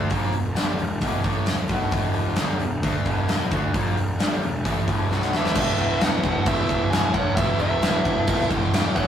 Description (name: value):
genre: hard rock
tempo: 132 BPM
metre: 4/4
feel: straight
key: unclear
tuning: A4 = 445 Hz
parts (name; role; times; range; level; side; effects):
- cranked stack guitar; riff; 0.0-9.1 s; E2 to D4; -29 LUFS; left 4 dB; overdrive
- overdriven electric guitar; riff; 0.0-9.1 s; E2 to D4; -31 LUFS; right 3 dB; none
- fuzz picked electric bass; bass; 0.0-9.1 s; E1 to E2; -28 LUFS; equal; overdrive
- huge arena drum kit; drums; 0.1-9.1 s; crash cymbal, hi-hat, kick drum, snare drum; -23 LUFS; equal; none
- biting lead guitar; melody; 5.4-9.1 s; E5 to G#5; -26 LUFS; right 2 dB; overdrive
- octave-fuzz lead guitar; second line; 5.4-9.1 s; B3 to E4; -31 LUFS; right 1 dB; distortion
- tonewheel organ; sustained chords; 5.6-9.1 s; none; barely audible; none; none
room: light reverb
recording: rough rehearsal-room recording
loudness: -20 LUFS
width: side -9 dB against mid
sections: 0.0-5.6 A section; 5.6-9.1 B section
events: drum fill 5.1-5.6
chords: 0.0 E5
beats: | 0.12 0.57 1.02 1.48 | 1.93 2.39 2.84 3.29 | 3.75 4.20 4.66 5.11 | 5.56 6.01 6.47 6.92 | 7.37 7.83 8.28 8.73